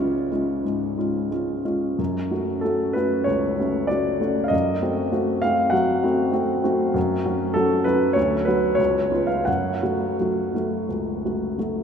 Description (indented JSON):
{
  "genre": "classical, romantic character piece for solo piano",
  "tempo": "96 BPM",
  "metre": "4/4",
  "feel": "uneven beats, rubato",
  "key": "F# minor",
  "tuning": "A4 = 440 Hz",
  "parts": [
    { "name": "warm grand piano", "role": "solo", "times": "0.0-11.8 s", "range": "C#2 to F#5", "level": "-20 LUFS", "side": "equal", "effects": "none" }
  ],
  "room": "wet cathedral reverb, RT60 4.8 s",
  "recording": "in a vast, echoing space",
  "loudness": "-20 LUFS",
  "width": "side -7 dB against mid",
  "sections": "0.0-11.8 A section",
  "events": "none",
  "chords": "0.0 C#; 2.0 F#m; 4.5 F#dim7; 7.0 F#5; 8.2 Bm/D; 8.8 C#7; 9.5 F#m"
}